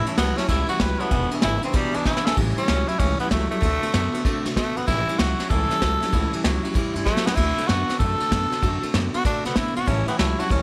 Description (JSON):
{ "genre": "rockabilly", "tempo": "192 BPM", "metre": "4/4", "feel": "swing 65% on 8ths", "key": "A mixolydian", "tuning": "A4 = 440 Hz", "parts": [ { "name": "raspy tenor saxophone", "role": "melody", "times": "0.0-10.6 s", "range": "G3 to B4", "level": "-28 LUFS", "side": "equal", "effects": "none" }, { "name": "picked steel-string acoustic guitar", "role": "accompaniment", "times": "0.0-10.6 s", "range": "E2 to F#4", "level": "-34 LUFS", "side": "equal", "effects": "none" }, { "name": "electric guitar through a small old amp", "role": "riff", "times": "0.0-10.6 s", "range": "E2 to B3", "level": "-31 LUFS", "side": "equal", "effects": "none" }, { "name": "upright bass", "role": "bass", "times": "0.0-10.6 s", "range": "E1 to C3", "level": "-29 LUFS", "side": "equal", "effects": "none" }, { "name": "tack piano", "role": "accompaniment", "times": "0.1-2.3, 9.9-10.6 s", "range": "B4 to B5", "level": "-37 LUFS", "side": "equal", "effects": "plate reverb" }, { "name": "vintage brush drum kit", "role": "drums", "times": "0.1-10.6 s", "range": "crash cymbal, kick drum, ride cymbal, snare drum", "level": "-27 LUFS", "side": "equal", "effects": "none" } ], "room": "light reverb", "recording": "none", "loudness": "-22 LUFS", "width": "mono", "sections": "0.0-2.4 A section; 2.4-10.6 B section", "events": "tenor saxophone solo 0.0-2.4; drum fill 2.1-2.4, 7.1-7.4", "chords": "0.0 A7; 1.1 E7; 2.4 A7; 3.6 D7; 4.9 A7; 7.4 D7; 9.9 A7" }